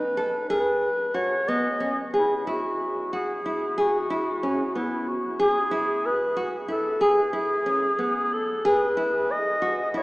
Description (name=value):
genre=contemporary instrumental, contemporary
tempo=184 BPM (eighths)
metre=5/8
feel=straight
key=C# minor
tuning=A4 = 435 Hz
part: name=mellow clarinet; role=melody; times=0.0-10.0 s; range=E4 to D#5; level=-25 LUFS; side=equal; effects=none
part: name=nylon-string guitar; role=arpeggios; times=0.0-10.0 s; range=B3 to A4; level=-25 LUFS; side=equal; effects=none
room=wet cathedral reverb, RT60 5.0 s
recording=recorded in a church or concert hall, small speaker sound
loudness=-22 LUFS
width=side -21 dB against mid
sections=0.0-2.1 A section; 2.1-10.0 B section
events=none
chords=0.0 B; 2.1 C#m7 (rootless)